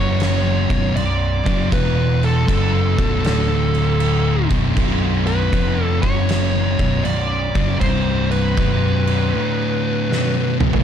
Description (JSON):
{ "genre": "stoner and doom metal", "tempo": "79 BPM", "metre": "4/4", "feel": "swing 66% on 8ths", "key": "unclear", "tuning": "A4 = 440 Hz", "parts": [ { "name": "fuzz lead guitar", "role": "melody", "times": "0.0-10.6 s", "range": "A4 to D5", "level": "-24 LUFS", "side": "left 1 dB", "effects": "wah, distortion, tape echo" }, { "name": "metallic inharmonic drone", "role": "sustained chords", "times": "0.0-10.8 s", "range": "B3 to F#5", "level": "-33 LUFS", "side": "right 1 dB", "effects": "none" }, { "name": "thick fuzz guitar", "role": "riff", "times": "0.0-10.8 s", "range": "B1 to F#3", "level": "-23 LUFS", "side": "left 11 dB", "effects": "distortion" }, { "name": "thick fuzz guitar", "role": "riff", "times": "0.0-10.8 s", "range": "B1 to F#3", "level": "-23 LUFS", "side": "right 8 dB", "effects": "distortion" }, { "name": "overdriven fingered electric bass", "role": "bass", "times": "0.0-9.3 s", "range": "B0 to F#1", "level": "-21 LUFS", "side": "equal", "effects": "none" }, { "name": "oversized low-tuned drum kit", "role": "drums", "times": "0.2-10.8 s", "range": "crash cymbal, kick drum, snare drum, toms", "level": "-22 LUFS", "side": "right 1 dB", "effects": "none" } ], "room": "studio reverb", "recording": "dark, warm production", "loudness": "-16 LUFS", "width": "side -8 dB against mid", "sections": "0.0-10.8 A section", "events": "drum fill 10.1-10.8", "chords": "0.0 F#5; 0.6 Bm; 1.7 E5; 2.5 B5; 3.2 D5; 4.4 B5; 5.9 F#5; 6.7 Bm; 7.8 C5; 8.6 B5; 9.3 D5; 10.1 B5", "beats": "0.20 0.96 | 1.72 2.48 3.24 4.00 | 4.77 5.53 6.29 7.05 | 7.81 8.58 9.34 10.10" }